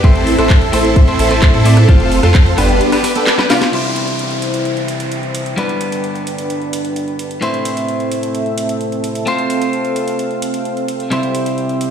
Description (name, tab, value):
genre	EDM, festival progressive house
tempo	130 BPM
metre	4/4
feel	straight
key	unclear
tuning	A4 = 440 Hz
part	clean electric guitar	accompaniment	0.0-11.9 s	G2 to D5	-20 LUFS	left 2 dB	sidechain pumping, ping-pong delay
part	supersaw pad	sustained chords	0.0-11.9 s	C4 to D6	-21 LUFS	right 2 dB	sidechain pumping, low-pass filter
part	bright grand piano	arpeggios	0.0-3.7 s	F4 to A4	-24 LUFS	right 1 dB	sidechain pumping, ping-pong delay
part	big supersaw lead	riff	0.0-3.7 s	B3 to A4	-17 LUFS	right 1 dB	phaser, sidechain pumping, ping-pong delay
part	saturated sub bass	bass	0.0-2.8 s	F1 to A2	-14 LUFS	equal	sidechain pumping
part	electronic kick drum	drums	0.0-2.4 s	none	-9 LUFS	equal	none
part	house drum kit	drums	0.0-11.9 s	crash cymbal, handclaps, hi-hat, rim click, snare drum	-23 LUFS	right 1 dB	none
part	downlifter	sound effects	3.7-7.4 s	none	-27 LUFS	equal	none
room	little or no reverb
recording	played on a big sound system in a bare room, stone room reverb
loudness	-12 LUFS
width	side -8 dB against mid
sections	0.0-3.7 A section; 3.7-11.9 B section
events	drop 0.0-3.7; break 2.8-3.7; drum fill 3.3-3.7; band accent 3.6; filter sweep on supersaw synth 3.7-11.9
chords	0.0 Am; 1.9 F; 2.8 G; 3.7 C; 5.6 G; 7.4 Am; 9.3 F; 11.1 C